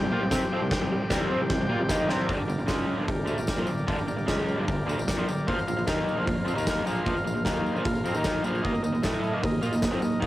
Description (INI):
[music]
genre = garage rock duo or trio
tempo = 151 BPM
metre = 4/4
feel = straight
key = G minor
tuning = A4 = 440 Hz
[part]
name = combo organ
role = sustained chords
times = 0.0-10.3 s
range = Eb4 to Bb5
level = -33 LUFS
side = equal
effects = cassette tape
[part]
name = raw garage guitar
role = riff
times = 0.0-10.3 s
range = G2 to A4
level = -28 LUFS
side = equal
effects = overdrive, cassette tape
[part]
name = mellow tuba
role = bass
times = 0.0-10.3 s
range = G1 to C3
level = -33 LUFS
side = equal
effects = none
[part]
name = oversized low-tuned drum kit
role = drums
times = 0.3-10.3 s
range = crash cymbal, hi-hat, kick drum, snare drum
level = -29 LUFS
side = equal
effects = cassette tape
[part]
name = tambourine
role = percussion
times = 0.3-10.2 s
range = none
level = -44 LUFS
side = left 3 dB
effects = none
[sound]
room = light reverb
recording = home recording on cassette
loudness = -24 LUFS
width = side -15 dB against mid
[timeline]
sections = 0.0-2.3 A section; 2.3-10.3 B section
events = drum fill 1.5-2.3; transistor combo organ fill 7.9-8.6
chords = 0.0 C5; 2.3 Gm; 5.5 Bb5; 8.6 Eb5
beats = 0.31 | 0.71 1.10 1.50 1.90 | 2.30 2.70 3.09 3.49 | 3.89 4.29 4.68 5.08 | 5.47 5.87 6.27 6.66 | 7.06 7.46 7.85 8.25 | 8.64 9.04 9.43 9.83 | 10.22